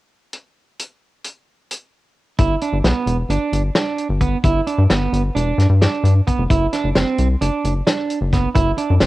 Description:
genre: progressive instrumental, band music in an uneven meter.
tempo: 262 BPM (eighths).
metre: 9/8.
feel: straight.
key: G major.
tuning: A4 = 437 Hz.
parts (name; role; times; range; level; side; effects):
warm soul drum kit; drums; 0.3-9.1 s; hi-hat, kick drum, snare drum; -20 LUFS; left 1 dB; cassette tape.
electric guitar at the edge of break-up; arpeggios; 2.4-9.1 s; B3 to E4; -21 LUFS; right 5 dB; none.
rubbery square bass; bass; 2.4-9.1 s; E1 to G2; -17 LUFS; left 1 dB; none.
room: studio reverb.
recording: home recording on cassette.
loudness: -15 LUFS.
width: side -17 dB against mid.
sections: 0.3-2.4 A section; 2.4-9.1 B section.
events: none.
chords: 0.3 N.C.; 2.4 G; 6.5 Dadd9/F#.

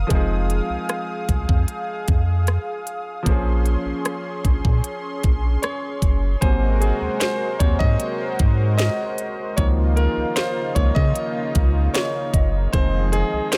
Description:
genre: contemporary R&B.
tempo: 76 BPM.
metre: 4/4.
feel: straight.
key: unclear.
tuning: A4 = 445 Hz.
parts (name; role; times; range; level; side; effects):
warm concert grand piano; accompaniment; 0.0-13.6 s; C3 to Eb5; -28 LUFS; equal; none.
lush unison pad; sustained chords; 0.0-13.6 s; Db3 to Eb6; -31 LUFS; equal; chorus.
rubbery square bass; bass; 0.0-13.4 s; F1 to Db3; -22 LUFS; equal; none.
trap drum kit; drums; 0.1-13.6 s; hi-hat, kick drum, rim click, snare drum; -23 LUFS; equal; none.
soft synth bell; texture; 6.4-13.1 s; Eb5 to Ab5; -39 LUFS; equal; chorus, phaser, digital delay.
room: digital ambience.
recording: none.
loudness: -21 LUFS.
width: mono.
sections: 0.0-6.4 A section; 6.4-13.6 B section.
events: grand piano solo 6.4-13.6.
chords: 0.1 Fm7; 3.3 Bbm9; 6.4 Ab9; 9.6 Db69; 12.7 Fm7.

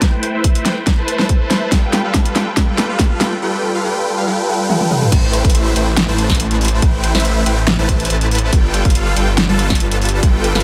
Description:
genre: future bass.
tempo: 141 BPM.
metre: 4/4.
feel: half-time.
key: A minor.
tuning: A4 = 438 Hz.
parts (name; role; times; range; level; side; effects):
supersaw chords; riff; 0.0-10.6 s; G3 to A5; -21 LUFS; equal; phaser, sidechain pumping, low-pass filter, digital delay.
electronic kick drum; drums; 0.0-10.3 s; none; -17 LUFS; equal; none.
pop drum kit; drums; 0.0-10.6 s; crash cymbal, hi-hat, snare drum, toms; -21 LUFS; equal; overdrive.
detuned saw bass; bass; 5.1-10.6 s; G1 to A1; -20 LUFS; equal; chorus, sidechain pumping.
room: light reverb.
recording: none.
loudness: -15 LUFS.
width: mono.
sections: 0.0-5.1 A section; 5.1-10.6 B section.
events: build-up 0.0-5.1; drum fill 0.0-3.4, 4.7-5.1; drop 5.1-10.6.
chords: 0.0 Am7; 1.7 G7; 5.1 Am7; 8.5 G7.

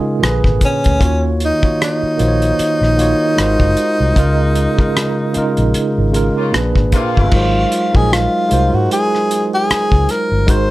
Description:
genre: R&B, neo-soul.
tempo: 76 BPM.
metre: 4/4.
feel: swing 56% on 16ths.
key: unclear.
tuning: A4 = 442 Hz.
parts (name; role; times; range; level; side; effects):
breathy tenor saxophone; melody; 0.0-10.7 s; Db4 to C5; -17 LUFS; equal; slapback echo.
tine electric piano; accompaniment; 0.0-10.7 s; Bb2 to Eb5; -18 LUFS; right 2 dB; fast stereo tremolo.
vintage muted fingered electric bass; bass; 0.2-10.7 s; Gb1 to Ab2; -16 LUFS; left 1 dB; none.
cloth-damped thuddy drum kit; drums; 0.2-10.7 s; crash cymbal, hi-hat, kick drum, rim click; -17 LUFS; equal; none.
clear horn section; stabs; 6.4-7.5 s; C3 to F4; -23 LUFS; left 2 dB; none.
room: little or no reverb.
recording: none.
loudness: -12 LUFS.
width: side -17 dB against mid.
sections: 0.0-7.3 A section; 7.3-10.7 B section.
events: band accent 4.2-7.3.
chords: 0.2 Bb7b9; 1.0 Ebm9; 3.4 Ab13; 4.2 Db6; 6.5 Bb7b9; 7.3 Ab13.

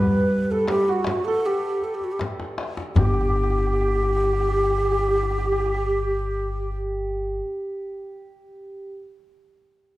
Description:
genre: Persian modal ensemble.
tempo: 79 BPM.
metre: 4/4.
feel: straight.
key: unclear.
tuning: A4 = 441 Hz.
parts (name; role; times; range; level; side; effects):
breathy bright low ney; melody; 0.0-6.8 s; F#4 to B4; -24 LUFS; equal; none.
santur; second line; 0.0-8.9 s; F#4 to B4; -28 LUFS; right 2 dB; none.
upright bass; bass; 0.0-7.4 s; G1 to G3; -25 LUFS; equal; none.
tombak; percussion; 0.1-3.3 s; none; -28 LUFS; left 2 dB; none.
frame drum; percussion; 0.7-3.3 s; none; -27 LUFS; left 1 dB; none.
room: moderate recital hall reverb, RT60 1.4 s.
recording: dark, warm production.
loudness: -21 LUFS.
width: side -17 dB against mid.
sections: 0.0-3.0 A section; 3.0-6.0 B section.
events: drum fill 2.2-3.0.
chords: none.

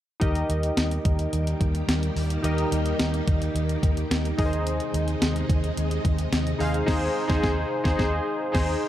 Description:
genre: 1980s-style pop.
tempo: 108 BPM.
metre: 4/4.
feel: straight.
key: Eb major.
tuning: A4 = 440 Hz.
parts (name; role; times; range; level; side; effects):
warm analog keys; accompaniment; 0.2-8.9 s; Eb4 to F5; -28 LUFS; equal; chorus.
string machine, full ensemble; sustained chords; 0.2-8.9 s; C3 to G4; -32 LUFS; equal; ensemble chorus.
vintage muted fingered electric bass; bass; 0.2-8.7 s; Eb2; -26 LUFS; equal; none.
clean 12-bit digital drum machine; drums; 0.2-8.7 s; crash cymbal, hi-hat, kick drum, snare drum; -26 LUFS; equal; overdrive.
room: light reverb.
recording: dark, warm production.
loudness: -22 LUFS.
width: side -12 dB against mid.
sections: 0.2-8.9 A section.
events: band accent 6.9-8.9.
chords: 0.2 Eb; 4.4 Ab.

